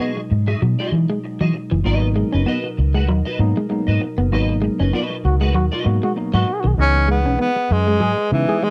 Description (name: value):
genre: funk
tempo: 97 BPM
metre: 4/4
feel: swing 56% on 16ths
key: C# dorian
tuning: A4 = 439 Hz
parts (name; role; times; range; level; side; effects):
- clean electric guitar; accompaniment; 0.0-6.7 s; F#4 to F#5; -29 LUFS; equal; ensemble chorus
- percussive tonewheel organ; sustained chords; 0.0-8.7 s; B2 to D#5; -33 LUFS; equal; fast rotary speaker
- electric guitar at the edge of break-up; riff; 0.0-8.7 s; D#3 to C#4; -25 LUFS; equal; none
- vintage muted fingered electric bass; bass; 0.3-8.4 s; F#1 to E3; -20 LUFS; equal; none
- tine electric piano; stabs; 1.8-8.7 s; E3 to F#4; -27 LUFS; equal; none
- breathy trombone; second line; 5.2-8.6 s; F#4 to G#4; -27 LUFS; equal; none
- breathy tenor saxophone; melody; 6.8-8.7 s; E3 to C#4; -21 LUFS; equal; none
room: little or no reverb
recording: dry, close 1970s-style studio recording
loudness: -19 LUFS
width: mono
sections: 0.0-6.8 A section; 6.8-8.7 B section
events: band accent 4.3-6.8; tenor saxophone solo 6.8-8.7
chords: 0.0 Emaj9; 1.8 G#m7; 6.8 C#m7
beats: 0.00 0.61 1.23 | 1.85 2.47 3.08 3.70 | 4.32 4.93 5.55 6.17 | 6.78 7.40 8.01 8.63